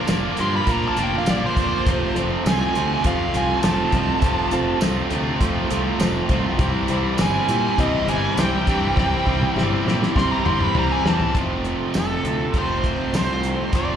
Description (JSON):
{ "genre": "classic rock", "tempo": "101 BPM", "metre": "4/4", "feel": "straight", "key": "F major", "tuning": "A4 = 440 Hz", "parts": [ { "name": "dark smooth lead guitar", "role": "melody", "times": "0.0-14.0 s", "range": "A4 to C6", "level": "-25 LUFS", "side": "right 1 dB", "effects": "wah, overdrive, slapback echo, plate reverb" }, { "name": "picked twelve-string acoustic guitar", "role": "accompaniment", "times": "0.0-14.0 s", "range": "F2 to G4", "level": "-34 LUFS", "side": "left 1 dB", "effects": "none" }, { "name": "crunchy overdriven guitar", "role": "riff", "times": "0.0-14.0 s", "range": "F2 to C4", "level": "-26 LUFS", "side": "left 10 dB", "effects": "slapback echo" }, { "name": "distorted electric guitar", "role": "riff", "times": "0.0-14.0 s", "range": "F2 to F4", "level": "-25 LUFS", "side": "right 11 dB", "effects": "overdrive, slapback echo" }, { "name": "fuzz fingered electric bass", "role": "bass", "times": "0.1-14.0 s", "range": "F1 to C3", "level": "-26 LUFS", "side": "equal", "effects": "overdrive" }, { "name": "damped 70s drum kit", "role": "drums", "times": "0.1-13.9 s", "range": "hi-hat, kick drum, snare drum, tambourine, toms", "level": "-23 LUFS", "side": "equal", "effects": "none" }, { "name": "reed electric piano", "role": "accompaniment", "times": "1.8-11.3 s", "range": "E4 to D5", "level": "-31 LUFS", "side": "left 2 dB", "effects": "fast tremolo, plate reverb, slapback echo" } ], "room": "light reverb", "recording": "live gig heard through the venue's PA, club reverb", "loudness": "-18 LUFS", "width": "side -9 dB against mid", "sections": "0.0-11.3 A section; 11.3-14.0 B section", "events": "lead electric guitar solo 0.0-11.3; drum fill 9.0-11.3", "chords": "0.0 Bb; 1.9 F; 6.6 C; 11.3 F", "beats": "0.07 0.67 1.26 | 1.85 2.45 3.04 3.63 | 4.23 4.82 5.41 6.01 | 6.60 7.19 7.78 8.38 | 8.97 9.56 10.16 10.75 | 11.35 11.94 12.54 13.14 | 13.74" }